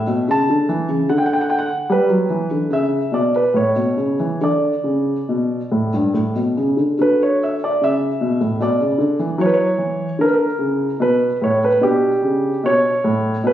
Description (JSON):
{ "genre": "classical, baroque-style suite movement for grand piano", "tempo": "69-76 BPM", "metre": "3/4", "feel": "rubato", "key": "D major, B minor from 7.0 s", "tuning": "A4 = 439 Hz", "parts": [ { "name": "warm concert grand piano", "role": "solo", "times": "0.0-13.5 s", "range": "G2 to A5", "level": "-16 LUFS", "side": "equal", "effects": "none" } ], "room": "light reverb", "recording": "recorded on a phone in the room, studio reverb, compression, nothing above 7.7 kHz", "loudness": "-16 LUFS", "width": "side -11 dB against mid", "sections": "0.0-7.0 A section; 7.0-13.5 A section", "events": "none", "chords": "0.0 A; 1.1 N.C.; 1.9 G (rootless); 3.5 A; 4.4 D5; 7.0 Bm; 9.4 F#7; 11.0 Aadd9; 11.8 G/B" }